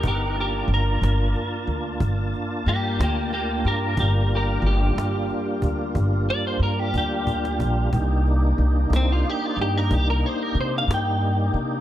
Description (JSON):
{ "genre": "slow blues", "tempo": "61 BPM (dotted quarters)", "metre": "12/8", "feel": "straight", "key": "G minor", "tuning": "A4 = 440 Hz", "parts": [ { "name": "clean electric guitar", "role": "melody", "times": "0.0-11.6 s", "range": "Bb3 to G5", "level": "-27 LUFS", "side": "equal", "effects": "ensemble chorus" }, { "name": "tonewheel organ", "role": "sustained chords", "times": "0.0-11.8 s", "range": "G3 to A5", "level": "-27 LUFS", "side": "equal", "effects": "slow rotary speaker, chorus vibrato" }, { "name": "upright bass", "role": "bass", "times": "0.0-11.8 s", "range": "G1 to C3", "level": "-22 LUFS", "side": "equal", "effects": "none" }, { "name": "cajon", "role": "drums", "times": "0.0-11.6 s", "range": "none", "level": "-30 LUFS", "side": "equal", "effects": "none" } ], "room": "light reverb, studio ambience", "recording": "none", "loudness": "-20 LUFS", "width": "side -12 dB against mid", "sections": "0.0-11.8 A section", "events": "clean electric guitar solo 0.0-11.8; drum fill 7.0-7.9", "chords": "0.0 Gm7; 7.9 Cm7" }